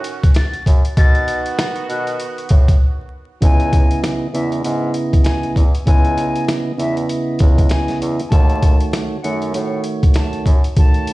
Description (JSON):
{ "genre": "hip hop, boom-bap hip-hop", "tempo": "98 BPM", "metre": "4/4", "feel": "swing 59% on 16ths", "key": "C# minor", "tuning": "A4 = 440 Hz", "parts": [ { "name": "mellow horn section", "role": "stabs", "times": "0.0-2.8 s", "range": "D#3 to F#4", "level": "-27 LUFS", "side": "right 4 dB", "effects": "high-pass filter, low-pass filter, analog delay" }, { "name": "warm bassoon", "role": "bass", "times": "0.0-10.6 s", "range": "C#2 to B2", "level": "-24 LUFS", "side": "left 1 dB", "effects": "none" }, { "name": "boom bap sampler-style drum kit", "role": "drums", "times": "0.0-11.1 s", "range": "hi-hat, kick drum, snare drum", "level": "-13 LUFS", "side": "equal", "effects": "none" }, { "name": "breathy concert flute", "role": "melody", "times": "0.4-11.1 s", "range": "E5 to A6", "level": "-26 LUFS", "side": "left 3 dB", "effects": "high-pass filter, low-pass filter, plate reverb, analog delay" }, { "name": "tonewheel organ", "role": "accompaniment", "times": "3.4-11.1 s", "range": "C#3 to D#5", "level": "-20 LUFS", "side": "right 2 dB", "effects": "stopped rotary speaker, cassette tape, high-pass filter, low-pass filter" } ], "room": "light reverb", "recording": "played on a big sound system in a bare room, stone room reverb, vinyl crackle, nothing above 10.9 kHz", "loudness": "-14 LUFS", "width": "side -19 dB against mid", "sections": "0.0-3.4 A section; 3.4-11.1 B section", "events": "break 0.0-3.4", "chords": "0.0 D#m7b5; 1.0 B7; 3.4 C#m9; 8.3 D#m7b5", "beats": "0.36 | 0.97 1.58 2.19 2.81 | 3.42 4.03 4.64 5.26 | 5.87 6.48 7.09 7.71 | 8.32 8.93 9.54 10.15 | 10.77" }